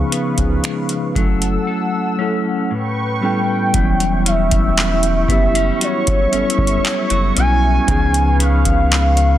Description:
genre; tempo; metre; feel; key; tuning
contemporary R&B; 58 BPM; 4/4; straight; E dorian; A4 = 437 Hz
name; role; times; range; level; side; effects
mellow tine electric piano; accompaniment; 0.0-9.4 s; E3 to A4; -21 LUFS; equal; medium stereo tremolo
warm analog pad; sustained chords; 0.0-9.4 s; E4 to E6; -25 LUFS; right 2 dB; chorus, sidechain pumping
clean electric guitar; arpeggios; 0.0-9.4 s; A2 to A4; -24 LUFS; left 4 dB; none
warm sub bass; bass; 0.0-9.4 s; E1 to C#2; -18 LUFS; equal; none
booming analog drum machine; drums; 0.1-9.4 s; finger snaps, handclaps, hi-hat, kick drum; -18 LUFS; equal; soft clipping on snare
gliding portamento lead; melody; 3.2-9.4 s; C#5 to G#5; -19 LUFS; equal; chorus, digital delay
room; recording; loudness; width
little or no reverb; dense, heavily limited modern master; -14 LUFS; side -12 dB against mid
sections
0.0-3.7 A section; 3.7-9.4 B section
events
drums muted 1.7-3.7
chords
0.0 C#7; 1.2 F#m7; 2.7 A9; 3.7 Em69; 7.9 C#7

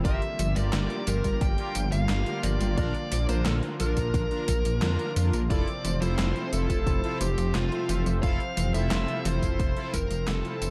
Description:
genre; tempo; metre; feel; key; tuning
synthwave; 88 BPM; 4/4; straight; unclear; A4 = 441 Hz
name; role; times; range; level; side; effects
bluesy overdriven lead guitar; melody; 0.0-10.7 s; F4 to G5; -35 LUFS; equal; distortion, digital delay
warm analog pad; sustained chords; 0.0-10.7 s; C3 to C5; -38 LUFS; equal; subtle chorus, sidechain pumping
analog synth brass; stabs; 0.0-10.7 s; D4 to E5; -38 LUFS; equal; chorus
dark detuned saw bass; bass; 0.0-10.7 s; F1 to F2; -30 LUFS; equal; sidechain pumping
electronic kick drum; drums; 0.0-10.1 s; none; -31 LUFS; equal; none
gated 80s digital drum machine; drums; 0.0-10.7 s; handclaps, hi-hat, snare drum, tambourine; -36 LUFS; equal; gated reverb, gated reverb snare, overdrive
analog pluck; arpeggios; 0.1-10.7 s; C3 to Bb3; -38 LUFS; equal; none
room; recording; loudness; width
little or no reverb; dark, warm production; -27 LUFS; mono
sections
0.0-10.7 A section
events
fade-out 9.1-10.7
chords
0.1 Gm7; 2.8 Bb; 5.5 Fmaj7

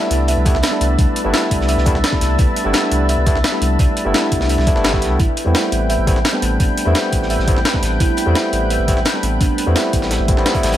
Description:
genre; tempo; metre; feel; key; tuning
liquid drum and bass; 171 BPM; 4/4; straight; unclear; A4 = 440 Hz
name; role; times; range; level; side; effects
barky tine electric piano; accompaniment; 0.0-10.8 s; G3 to E4; -20 LUFS; left 1 dB; ping-pong delay
lush unison pad; sustained chords; 0.0-10.8 s; D4 to A5; -24 LUFS; left 1 dB; chorus
harp-like synth pluck; arpeggios; 0.0-10.6 s; B3 to E5; -26 LUFS; right 6 dB; chorus, digital delay
warm sub bass; bass; 0.1-10.8 s; G1 to E2; -18 LUFS; equal; none
breakbeat sampler-style drum kit; drums; 0.1-10.7 s; hi-hat, snare drum; -21 LUFS; left 1 dB; none
crunchy breakbeat drum kit; drums; 0.1-10.8 s; hi-hat, snare drum; -28 LUFS; equal; high-pass filter on hats, high-pass filter on snare, high-pass filter on room
electronic kick drum; drums; 0.5-10.6 s; none; -18 LUFS; equal; none
room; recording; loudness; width
light reverb; none; -14 LUFS; side -12 dB against mid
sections
0.0-10.8 A section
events
none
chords
0.0 Cmaj13; 5.2 Am9

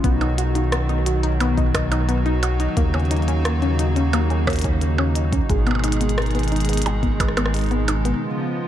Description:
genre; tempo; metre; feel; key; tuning
IDM; 88 BPM; 4/4; straight; unclear; A4 = 440 Hz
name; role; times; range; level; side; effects
hollow soft pad; sustained chords; 0.0-8.7 s; B2 to G#4; -25 LUFS; equal; chorus
warbly dusty pluck; arpeggios; 0.0-8.2 s; G#3 to D#5; -26 LUFS; left 3 dB; chorus, tape echo
round analog bass; bass; 0.0-8.1 s; G#1 to D#2; -21 LUFS; equal; none
electronic kick drum; drums; 0.0-7.3 s; none; -22 LUFS; equal; none
glitchy drum kit; drums; 0.0-8.2 s; hi-hat, percussion blips, rim click; -27 LUFS; right 2 dB; none
room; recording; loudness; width
light reverb, digital ambience; dark, warm production; -18 LUFS; side -11 dB against mid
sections
0.0-8.7 A section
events
break 8.2-8.7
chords
0.0 B; 2.8 D#m7; 5.5 G#m

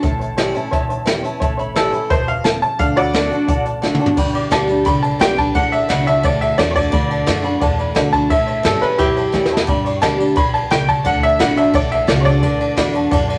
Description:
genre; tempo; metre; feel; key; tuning
rockabilly; 174 BPM; 4/4; straight; D major; A4 = 435 Hz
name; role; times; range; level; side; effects
bright upright piano; melody; 0.0-12.9 s; E4 to B5; -20 LUFS; equal; none
honky-tonk upright piano; accompaniment; 0.0-13.4 s; C#5 to D6; -26 LUFS; equal; none
picked steel-string acoustic guitar; accompaniment; 0.0-13.4 s; E2 to G4; -24 LUFS; equal; none
upright bass; bass; 0.0-13.4 s; E1 to A2; -26 LUFS; equal; none
jazz brush drum kit; drums; 0.0-13.4 s; crash cymbal, hi-hat, kick drum, ride cymbal, snare drum, toms; -22 LUFS; equal; none
room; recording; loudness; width
moderate studio reverb, RT60 0.8 s; none; -17 LUFS; mono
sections
0.0-4.2 A section; 4.2-13.4 B section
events
drum fill 3.8-4.2, 9.3-9.7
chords
0.0 A7; 2.8 D; 4.2 G; 5.6 D; 8.3 A7; 9.7 G; 11.1 D

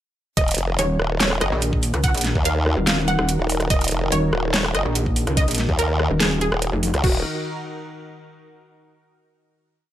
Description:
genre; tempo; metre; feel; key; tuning
heavy wobble dubstep; 144 BPM; 4/4; half-time; Eb minor; A4 = 440 Hz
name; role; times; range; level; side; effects
wide unison pluck; melody; 0.4-7.2 s; Gb4 to Gb5; -26 LUFS; right 1 dB; tape echo
lush unison pad; sustained chords; 0.4-7.2 s; Eb3 to Bb4; -29 LUFS; equal; chorus, vintage 12-bit sampler grit, sidechain pumping
formant-sweep wobble bass; bass; 0.4-7.2 s; Eb1 to Eb2; -22 LUFS; equal; chorus, overdrive
dubstep drum kit; drums; 0.4-7.1 s; crash cymbal, hi-hat, rim click, snare drum; -24 LUFS; equal; studio reverb
electronic kick drum; drums; 0.4-7.1 s; none; -22 LUFS; equal; studio reverb
pulsing pluck wobble bass; bass; 0.8-6.9 s; Eb1 to Db2; -22 LUFS; equal; chorus, overdrive
room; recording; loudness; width
little or no reverb; none; -18 LUFS; side -12 dB against mid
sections
0.4-7.0 drop; 7.0-8.7 final chord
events
drop 0.4-7.0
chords
0.4 Ebm

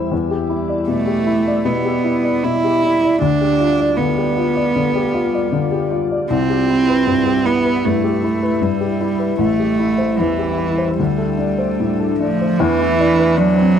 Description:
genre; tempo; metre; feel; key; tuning
neoclassical piano and strings; 77 BPM; 4/4; rubato; unclear; A4 = 441 Hz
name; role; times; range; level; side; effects
warm baby grand piano; accompaniment; 0.0-13.8 s; A1 to D5; -19 LUFS; left 4 dB; none
glassy FM pad; sustained chords; 0.0-13.8 s; G3 to E5; -24 LUFS; left 3 dB; ensemble chorus, built-in reverb
warm cello; second line; 0.9-13.8 s; E3 to E4; -17 LUFS; right 4 dB; none
room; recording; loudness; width
light reverb; dry, close 1970s-style studio recording; -15 LUFS; side -8 dB against mid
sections
0.0-12.6 A section; 12.6-13.8 B section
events
none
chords
0.1 Em7; 3.2 G7/D; 6.3 Cmaj7; 9.4 Am7; 11.0 D7sus4; 12.6 E7(no3)

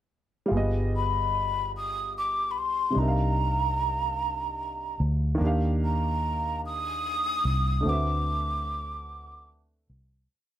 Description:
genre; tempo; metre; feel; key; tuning
slow six-eight R&B; 49 BPM (dotted quarters); 6/8; straight; unclear; A4 = 440 Hz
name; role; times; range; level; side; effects
warm baby grand piano; accompaniment; 0.5-10.3 s; C3 to F5; -32 LUFS; right 1 dB; none
vintage muted fingered electric bass; bass; 0.5-10.3 s; G1 to Eb2; -28 LUFS; equal; none
breathy mellow jazz flute; melody; 1.0-9.5 s; Bb5 to Eb6; -28 LUFS; equal; none
room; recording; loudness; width
light reverb; none; -25 LUFS; side -12 dB against mid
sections
0.5-10.3 verse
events
fade-out 7.9-10.3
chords
0.5 G7b9b13; 3.0 Cm11; 7.9 D13

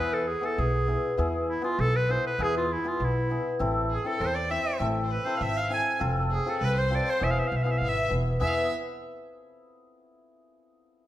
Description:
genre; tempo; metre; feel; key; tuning
klezmer; 100 BPM; 2/4; straight; E phrygian dominant; A4 = 440 Hz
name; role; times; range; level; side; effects
bright clarinet; melody; 0.0-8.7 s; E4 to G#5; -29 LUFS; equal; none
hammered dulcimer; accompaniment; 0.0-8.7 s; B3 to C5; -30 LUFS; left 2 dB; none
upright bass; bass; 0.0-8.7 s; E1 to E2; -29 LUFS; equal; none
bright violin; second line; 3.9-8.7 s; G#4 to G#5; -35 LUFS; right 3 dB; none
room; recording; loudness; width
moderate recital hall reverb, RT60 1.4 s; none; -24 LUFS; side -13 dB against mid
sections
0.0-8.4 A section; 8.4-9.6 B section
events
none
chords
0.0 E; 3.6 Am; 6.0 F; 7.2 E

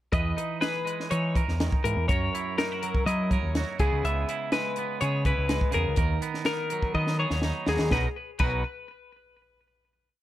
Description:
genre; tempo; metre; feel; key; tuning
math rock and midwest emo; 124 BPM; 4/4; straight; B major; A4 = 442 Hz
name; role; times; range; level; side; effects
twangy electric guitar; accompaniment; 0.1-8.6 s; F#2 to B4; -33 LUFS; right 9 dB; none
twelve-string electric guitar; arpeggios; 0.1-8.6 s; G#4 to E5; -30 LUFS; left 4 dB; digital delay
growling picked electric bass; bass; 0.1-8.6 s; B1 to F#3; -28 LUFS; equal; overdrive
compact cocktail drum kit; drums; 0.1-8.5 s; crash cymbal, hi-hat, kick drum, snare drum; -28 LUFS; equal; none
room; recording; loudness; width
light reverb; dark, warm production; -24 LUFS; side -14 dB against mid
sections
0.1-7.9 A section; 7.9-9.9 final chord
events
drum fill 7.0-7.9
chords
0.1 Emaj7; 2.1 F#7; 3.8 C#m7; 6.0 Bmaj7/D#; 7.9 Bmaj7

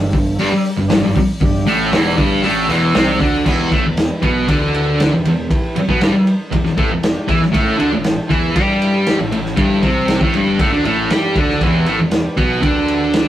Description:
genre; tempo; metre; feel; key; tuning
garage rock duo or trio; 118 BPM; 4/4; straight; E minor; A4 = 440 Hz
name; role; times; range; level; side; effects
overdriven combo organ; sustained chords; 0.0-13.3 s; D4 to G5; -29 LUFS; equal; none
thick fuzz guitar; riff; 0.0-13.3 s; E2 to G4; -15 LUFS; equal; distortion
modern bright picked electric bass; bass; 0.0-13.2 s; E1 to G2; -24 LUFS; equal; overdrive
vintage drum kit; drums; 0.1-13.3 s; crash cymbal, hi-hat, kick drum, ride cymbal, snare drum; -18 LUFS; equal; none
room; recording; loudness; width
moderate studio reverb, RT60 0.6 s; rough rehearsal-room recording; -13 LUFS; side -12 dB against mid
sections
0.0-3.5 A section; 3.5-13.3 B section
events
none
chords
0.0 G5; 3.5 Em; 7.5 A5; 11.6 Em

